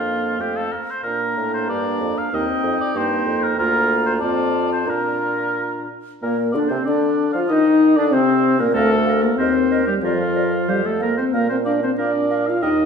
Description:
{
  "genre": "quick classical-period movement for wind quintet",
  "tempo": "94 BPM",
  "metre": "2/4",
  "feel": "rubato",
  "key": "Bb major",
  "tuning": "A4 = 441 Hz",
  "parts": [
    { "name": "mellow hollow silver concert flute", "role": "melody", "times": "0.0-12.7 s", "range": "C4 to Bb5", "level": "-25 LUFS", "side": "left 6 dB", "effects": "none" },
    { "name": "warm oboe", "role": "second line", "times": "0.0-12.9 s", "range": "F4 to F5", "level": "-25 LUFS", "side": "equal", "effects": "none" },
    { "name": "clear clarinet", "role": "accompaniment", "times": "0.0-12.8 s", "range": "Bb3 to C5", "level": "-27 LUFS", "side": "right 4 dB", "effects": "none" },
    { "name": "mellow French horn", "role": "accompaniment", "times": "0.0-12.9 s", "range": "F3 to F4", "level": "-21 LUFS", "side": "left 2 dB", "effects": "none" },
    { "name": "mellow bassoon", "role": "bass", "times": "0.0-12.9 s", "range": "D2 to F3", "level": "-24 LUFS", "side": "right 4 dB", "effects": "none" }
  ],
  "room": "wet recital hall reverb, RT60 1.4 s",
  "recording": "heard from further back in the room",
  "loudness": "-17 LUFS",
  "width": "side -6 dB against mid",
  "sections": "0.0-6.2 A section; 6.2-12.9 B section",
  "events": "none",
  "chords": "0.4 F; 1.0 Bb; 2.3 Eb; 3.6 Bb/D; 4.2 F; 4.9 Bb; 7.5 Eb5; 8.7 Bb/D; 9.4 Cm7/Eb; 10.0 Bb/F; 10.7 F5; 11.3 Bb5"
}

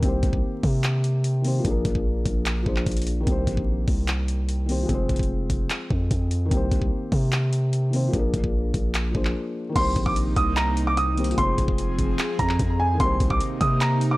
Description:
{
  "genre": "hip hop, trap",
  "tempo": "148 BPM",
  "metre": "4/4",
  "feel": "half-time",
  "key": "C minor",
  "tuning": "A4 = 440 Hz",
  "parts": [
    { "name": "felt-muted upright piano", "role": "accompaniment", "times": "0.0-14.2 s", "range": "Eb3 to C5", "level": "-29 LUFS", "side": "left 2 dB", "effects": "none" },
    { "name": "long sustained 808-style bass", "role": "bass", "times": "0.0-14.2 s", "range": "F1 to C3", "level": "-24 LUFS", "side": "equal", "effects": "none" },
    { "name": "trap drum kit", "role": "drums", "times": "0.0-14.1 s", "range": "crash cymbal, handclaps, hi-hat, kick drum", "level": "-26 LUFS", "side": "equal", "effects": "vintage 12-bit sampler grit" },
    { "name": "warm concert grand piano", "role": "melody", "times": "9.8-14.2 s", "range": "Ab5 to Eb6", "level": "-25 LUFS", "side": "right 1 dB", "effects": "tape echo" },
    { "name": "airy breathy pad", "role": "sustained chords", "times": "9.8-14.2 s", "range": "C3 to Ab4", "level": "-30 LUFS", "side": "equal", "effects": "chorus" }
  ],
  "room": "digital ambience",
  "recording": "dry, gritty hardware recording, vinyl crackle",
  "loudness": "-21 LUFS",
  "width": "side -19 dB against mid",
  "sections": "0.0-9.8 A section; 9.8-14.2 B section",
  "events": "break 9.4-9.8",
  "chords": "0.0 Cm7; 1.6 Bb7; 3.3 Cm7; 4.9 Fm; 6.5 Cm7; 8.1 Bb7; 9.8 Cm7; 11.4 Fm; 13.0 Cm7"
}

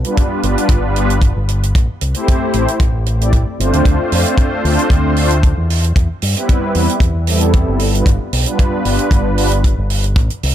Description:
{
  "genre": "nu-disco, nu disco",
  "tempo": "114 BPM",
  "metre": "4/4",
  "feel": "straight",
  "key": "unclear",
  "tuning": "A4 = 440 Hz",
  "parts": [
    { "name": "warm analog pad", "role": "accompaniment", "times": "0.0-9.5 s", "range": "G3 to D5", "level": "-17 LUFS", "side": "equal", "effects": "chorus, sidechain pumping, ping-pong delay" },
    { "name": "fingered electric bass with an envelope filter", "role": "bass", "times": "0.0-10.5 s", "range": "G1 to G2", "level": "-16 LUFS", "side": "equal", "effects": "none" },
    { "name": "hi-hat", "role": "drums", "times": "0.0-10.5 s", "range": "none", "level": "-23 LUFS", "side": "right 6 dB", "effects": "none" },
    { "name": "kick drum", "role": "drums", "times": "0.2-10.3 s", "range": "none", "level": "-14 LUFS", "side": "equal", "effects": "none" }
  ],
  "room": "studio reverb",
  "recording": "none",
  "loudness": "-12 LUFS",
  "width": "side -11 dB against mid",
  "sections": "0.0-10.5 A section",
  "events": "none",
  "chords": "0.0 G7; 1.7 Am7; 3.9 Dm7; 5.7 Cmaj7/E; 7.8 G7"
}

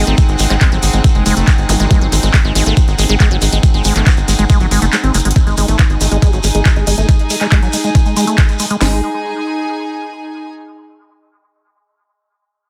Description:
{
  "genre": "psychedelic trance",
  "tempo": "139 BPM",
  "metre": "4/4",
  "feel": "straight",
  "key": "unclear",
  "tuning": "A4 = 441 Hz",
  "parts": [
    { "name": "bubbling stepped-filter texture", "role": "sustained chords", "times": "0.0-5.4 s", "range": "B#3", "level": "-30 LUFS", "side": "equal", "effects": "chorus, built-in reverb, sidechain pumping" },
    { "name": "liquid acid bass", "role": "riff", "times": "0.0-9.0 s", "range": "F#3 to B#3", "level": "-21 LUFS", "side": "equal", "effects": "phaser, sidechain pumping, dub echo" },
    { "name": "tight sequencer bass", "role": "bass", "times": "0.0-9.0 s", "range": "F#1 to G#1", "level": "-17 LUFS", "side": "equal", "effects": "none" },
    { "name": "rich chamber string section", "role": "texture", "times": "0.0-10.5 s", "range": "D#4 to G#5", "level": "-25 LUFS", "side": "equal", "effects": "sidechain pumping" },
    { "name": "drum and bass drum kit", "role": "drums", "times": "0.1-8.8 s", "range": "handclaps, hi-hat", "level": "-22 LUFS", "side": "equal", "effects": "overdrive" },
    { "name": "shekere", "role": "percussion", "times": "0.1-8.8 s", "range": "none", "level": "-26 LUFS", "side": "equal", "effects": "none" },
    { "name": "drum and bass drum kit", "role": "drums", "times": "0.2-8.9 s", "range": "hi-hat, kick drum, snare drum", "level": "-13 LUFS", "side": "equal", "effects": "overdrive" },
    { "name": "formant-sweep wobble bass", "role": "second line", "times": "0.5-0.7 s", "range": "B#3", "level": "-36 LUFS", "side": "equal", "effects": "none" },
    { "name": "zap", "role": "sound effects", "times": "1.7-1.8 s", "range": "none", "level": "-26 LUFS", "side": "equal", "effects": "none" }
  ],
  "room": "little or no reverb",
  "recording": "dense, heavily limited modern master",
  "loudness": "-13 LUFS",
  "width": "mono",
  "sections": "0.0-5.4 A section; 5.4-8.8 B section; 8.8-10.5 C section",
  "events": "drop 0.0-5.4; kick drops out 4.9-5.4; drum fill 5.1; filter sweep on acid bass 5.4-8.8",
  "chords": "0.0 G#5"
}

